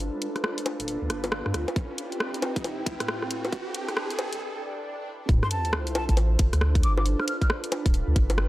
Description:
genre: UK garage, two-step garage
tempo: 136 BPM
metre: 4/4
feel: swing 63% on 16ths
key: D dorian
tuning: A4 = 440 Hz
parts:
  - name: airy breathy pad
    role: sustained chords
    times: 0.0-8.5 s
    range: C4 to C5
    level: -36 LUFS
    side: right 1 dB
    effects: chorus, sidechain pumping
  - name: saturated sub bass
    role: bass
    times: 0.0-8.5 s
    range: D1 to A2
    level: -26 LUFS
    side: equal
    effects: sidechain pumping
  - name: garage drum kit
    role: drums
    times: 0.0-8.5 s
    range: bongos, hi-hat, rim click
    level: -29 LUFS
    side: equal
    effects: none
  - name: riser, swell and sub drop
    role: sound effects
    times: 0.0-7.1 s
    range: none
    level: -35 LUFS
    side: equal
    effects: none
  - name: granular cloud pad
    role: texture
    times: 0.0-8.5 s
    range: C4 to G5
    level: -36 LUFS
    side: right 1 dB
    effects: built-in reverb, sidechain pumping
  - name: electronic kick drum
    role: drums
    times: 1.8-8.3 s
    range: none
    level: -23 LUFS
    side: equal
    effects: none
  - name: breathy mellow jazz flute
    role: melody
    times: 5.4-7.5 s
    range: A5 to F6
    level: -32 LUFS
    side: left 1 dB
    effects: tape echo
room: digital ambience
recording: dry, gritty hardware recording, high-pass filter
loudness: -24 LUFS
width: side -17 dB against mid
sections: 0.0-5.3 A section; 5.3-8.5 B section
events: build-up 0.0-5.3; riser 0.0-4.4; break 4.4-5.3; swell 4.4-5.3; drop 5.3-8.5; impact 5.3-7.1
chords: 0.0 G7; 1.8 Am7; 3.5 Cmaj7; 5.3 Dm7; 6.8 G7

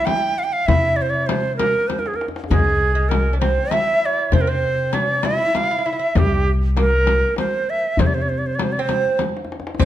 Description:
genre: Persian modal ensemble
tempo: 66 BPM (dotted quarters)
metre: 6/8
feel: straight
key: C dastgah homayun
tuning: A4 = 442 Hz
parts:
  - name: breathy bright ney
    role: melody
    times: 0.0-9.8 s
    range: G4 to G5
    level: -20 LUFS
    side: right 2 dB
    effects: none
  - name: lute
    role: second line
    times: 0.0-9.8 s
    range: G3 to E4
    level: -27 LUFS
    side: right 3 dB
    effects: none
  - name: frame drum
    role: percussion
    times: 0.1-9.8 s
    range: none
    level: -25 LUFS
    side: left 5 dB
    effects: none
  - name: tombak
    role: percussion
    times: 0.1-9.8 s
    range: none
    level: -24 LUFS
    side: left 1 dB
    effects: none
  - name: upright bass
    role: bass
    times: 0.7-9.8 s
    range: C2 to C3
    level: -21 LUFS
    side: equal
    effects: none
  - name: bright chamber cello section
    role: drone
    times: 9.8 s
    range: C2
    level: -23 LUFS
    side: left 3 dB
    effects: none
  - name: riq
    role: percussion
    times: 9.8 s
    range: none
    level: -26 LUFS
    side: right 12 dB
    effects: none
room: moderate recital hall reverb, RT60 1.4 s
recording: close, detailed microphones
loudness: -17 LUFS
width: side -12 dB against mid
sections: 0.0-9.8 A section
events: drum fill 1.9-2.5, 9.2-9.8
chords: none

